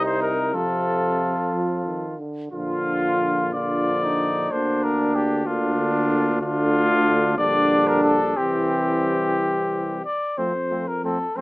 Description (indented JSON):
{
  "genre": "classical, brass quintet",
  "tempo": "61 BPM (dotted quarters)",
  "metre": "6/8",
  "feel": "rubato",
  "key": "Bb major, F major from 6.4 s",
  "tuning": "A4 = 442 Hz",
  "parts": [
    { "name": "mellow trumpet", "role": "melody", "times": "0.0-11.4 s", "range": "F4 to D5", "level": "-23 LUFS", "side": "left 2 dB", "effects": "none" },
    { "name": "warm trumpet", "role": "second line", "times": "0.0-11.4 s", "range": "C4 to F4", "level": "-26 LUFS", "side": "right 1 dB", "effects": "none" },
    { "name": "mellow French horn", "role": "accompaniment", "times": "0.0-11.4 s", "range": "F3 to Bb3", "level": "-30 LUFS", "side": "left 1 dB", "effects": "none" },
    { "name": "warm trombone", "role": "accompaniment", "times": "0.0-11.4 s", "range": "C3 to F3", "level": "-27 LUFS", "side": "right 1 dB", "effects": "none" },
    { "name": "mellow tuba", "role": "bass", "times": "0.0-11.4 s", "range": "Bb1 to F2", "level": "-28 LUFS", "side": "equal", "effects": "none" }
  ],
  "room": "light reverb",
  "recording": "small speaker sound",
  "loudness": "-19 LUFS",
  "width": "side -22 dB against mid",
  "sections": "0.0-10.4 A section; 10.4-11.4 B section",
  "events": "none",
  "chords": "0.0 Cm; 0.5 F; 2.5 Bb; 4.5 Bb/D; 6.4 Dm; 7.4 Gm/Bb; 8.4 C; 10.4 F"
}